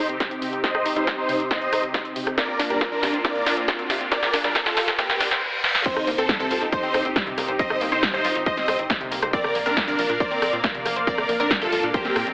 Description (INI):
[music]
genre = uplifting trance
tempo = 138 BPM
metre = 4/4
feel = straight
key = C dorian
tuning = A4 = 440 Hz
[part]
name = big supersaw lead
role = melody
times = 0.0-12.3 s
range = Bb3 to Eb5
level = -25 LUFS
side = equal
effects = cassette tape, sidechain pumping, low-pass filter, digital delay
[part]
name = filtered supersaw swell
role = sustained chords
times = 0.0-12.3 s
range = Bb2 to F5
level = -29 LUFS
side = equal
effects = phaser, sidechain pumping
[part]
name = analog pluck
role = arpeggios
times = 0.0-12.3 s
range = C3 to C5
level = -30 LUFS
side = left 1 dB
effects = chorus, sidechain pumping, digital delay
[part]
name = riser, reverse cymbal and impact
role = sound effects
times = 2.9-7.6 s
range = none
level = -31 LUFS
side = equal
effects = none
[part]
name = techno drum kit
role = drums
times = 0.1-12.3 s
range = crash cymbal, hi-hat, rim click, snare drum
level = -25 LUFS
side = equal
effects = overdrive, high-pass filter on snare, sidechain pumping on hats, high-pass filter on hats, sidechain pumping on cymbals, high-pass filter on cymbals
[part]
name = electronic kick drum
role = drums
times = 0.2-12.0 s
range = none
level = -25 LUFS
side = equal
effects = overdrive, high-pass filter on kick
[part]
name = analog pluck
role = second line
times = 5.9-12.3 s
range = G4 to Eb5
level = -28 LUFS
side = equal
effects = chorus, phaser, sidechain pumping
[part]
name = tight sequencer bass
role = bass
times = 6.0-12.3 s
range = G1 to Bb2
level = -34 LUFS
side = equal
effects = sidechain pumping
[sound]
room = moderate lush hall reverb, RT60 1.6 s, digital ambience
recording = high-pass filter, AM radio sound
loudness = -20 LUFS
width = side -24 dB against mid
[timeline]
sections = 0.0-5.9 A section; 5.9-12.3 B section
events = build-up 0.0-5.9; drum fill 0.0-5.4, 5.6; filter sweep on synth arpeggio sound 0.0-5.9; filter sweep 0.0-5.9; reverse cymbal 5.0-5.9; drop 5.9-12.3; impact 5.9-7.6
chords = 0.0 Cm; 2.4 Bb; 5.9 Cm; 9.3 Bb